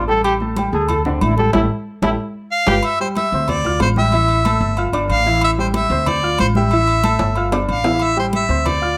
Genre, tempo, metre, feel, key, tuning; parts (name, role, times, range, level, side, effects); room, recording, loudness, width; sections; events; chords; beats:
latin, salsa; 186 BPM; 4/4; straight; A minor; A4 = 440 Hz
clear trombone; melody; 0.0-2.8 s; C4 to A4; -22 LUFS; equal; plate reverb
dark grand piano; accompaniment; 0.0-9.0 s; D3 to F6; -24 LUFS; equal
upright bass; bass; 0.0-8.9 s; G1 to D2; -23 LUFS; equal
congas; percussion; 0.1-9.0 s; -27 LUFS; equal
agogo bells and timbales; percussion; 0.2-8.8 s; -28 LUFS; equal
mellow harmonica; melody; 2.5-9.0 s; C5 to F5; -21 LUFS; equal; plate reverb
moderate studio ambience, RT60 0.5 s; -17 LUFS; mono
0.0-2.8 A section; 2.8-9.0 B section
trombone solo 0.0-2.8; band accent 1.5-2.8; drum fill 2.3-2.8, 7.2-8.0
0.2 A7sus4; 1.5 A5; 2.2 G7; 2.8 D9sus4; 3.5 Dm7; 4.1 A5; 4.8 G5; 5.4 Am7; 6.1 Dm7; 6.7 A5; 7.4 G5; 8.0 Am7
| 0.25 0.57 0.90 1.22 | 1.54 1.86 2.19 2.51 | 2.83 3.15 3.48 3.80 | 4.12 4.45 4.77 5.09 | 5.42 5.74 6.06 6.39 | 6.71 7.03 7.36 7.68 | 8.01 8.33 8.65